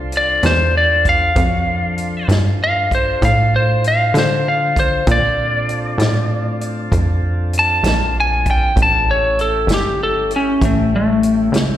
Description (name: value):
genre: slow blues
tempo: 65 BPM (dotted quarters)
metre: 12/8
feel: straight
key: D minor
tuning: A4 = 440 Hz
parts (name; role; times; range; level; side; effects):
- lightly driven lead guitar; melody; 0.0-11.5 s; A3 to A5; -16 LUFS; left 1 dB; plate reverb, slapback echo, digital delay
- tonewheel organ; sustained chords; 0.0-11.8 s; G#3 to C#5; -27 LUFS; equal; slow rotary speaker, plate reverb
- plucky analog bass; bass; 0.0-11.8 s; G1 to D3; -18 LUFS; equal; none
- vintage drum kit; drums; 0.1-11.7 s; hi-hat, kick drum, snare drum; -20 LUFS; equal; slapback echo
room: light reverb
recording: live gig heard through the venue's PA, recital hall reverb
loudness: -13 LUFS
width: side -12 dB against mid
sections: 0.0-11.8 A section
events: lead electric guitar solo 0.0-11.8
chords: 0.0 Dm7; 5.1 Bbmaj7; 8.8 A7